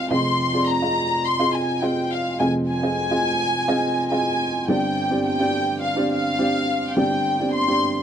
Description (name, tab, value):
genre	pop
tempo	105 BPM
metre	4/4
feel	straight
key	unclear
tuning	A4 = 440 Hz
part	dark studio violin section	melody	0.0-8.0 s	F5 to C6	-22 LUFS	left 2 dB	none
part	dark upright piano	accompaniment	0.0-8.0 s	F1 to Eb5	-22 LUFS	right 1 dB	none
room	light reverb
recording	dry, close 1970s-style studio recording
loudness	-19 LUFS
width	side -8 dB against mid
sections	0.0-8.0 A section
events	none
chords	0.1 Fm7; 4.7 Gsus4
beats	| 0.11 0.68 1.25 1.83 | 2.40 2.97 3.54 4.11 | 4.68 5.25 5.83 6.40 | 6.97 7.54